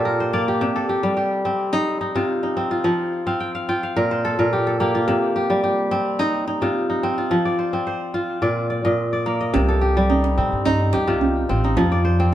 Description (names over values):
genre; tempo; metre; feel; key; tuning
west african traditional, West African string and xylophone music; 108 BPM; 4/4; straight; C dorian; A4 = 439 Hz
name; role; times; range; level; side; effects
kora; arpeggios; 0.0-12.3 s; Bb2 to G5; -19 LUFS; equal; tape echo
upright bass; bass; 9.5-12.3 s; A1 to C3; -20 LUFS; equal; none
djembe; percussion; 9.5-12.1 s; none; -24 LUFS; right 4 dB; none
room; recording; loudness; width
moderate stone room reverb, RT60 0.9 s; band playing live in one room; -18 LUFS; side -12 dB against mid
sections
0.0-9.5 A section; 9.5-12.3 A section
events
kora fill 0.0-0.6, 3.3-5.1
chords
0.0 N.C.; 0.6 Cm; 2.8 F5; 4.0 N.C.; 5.1 Cm; 7.3 F5; 8.4 Bb; 9.5 Cm; 11.8 F5